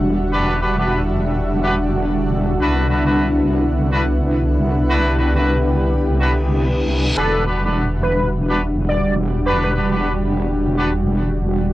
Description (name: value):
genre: glitch hop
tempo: 105 BPM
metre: 4/4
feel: swing 60% on 16ths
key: E minor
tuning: A4 = 443 Hz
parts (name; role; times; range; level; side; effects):
- warm analog pad; sustained chords; 0.0-11.7 s; D3 to G4; -23 LUFS; right 1 dB; chorus, vintage 12-bit sampler grit
- wobble bass; bass; 0.0-11.7 s; E1 to C2; -20 LUFS; equal; chorus
- granular cloud pad; texture; 0.0-11.7 s; G3 to F#5; -22 LUFS; equal; built-in reverb
- brilliant horn section; stabs; 0.3-10.9 s; B3 to B4; -23 LUFS; equal; vintage 12-bit sampler grit, tape echo
- reverse cymbal; sound effects; 6.4-7.2 s; none; -26 LUFS; equal; none
- sync lead; melody; 7.2-9.7 s; A4 to D5; -23 LUFS; equal; analog chorus, cassette tape, tape echo
room: moderate studio ambience, RT60 0.5 s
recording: dry, gritty hardware recording, cassette tape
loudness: -16 LUFS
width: side -16 dB against mid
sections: 0.0-11.7 A section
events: reverse cymbal 6.4-7.2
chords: 0.0 Em9; 2.6 Cmaj9#11; 7.2 Em9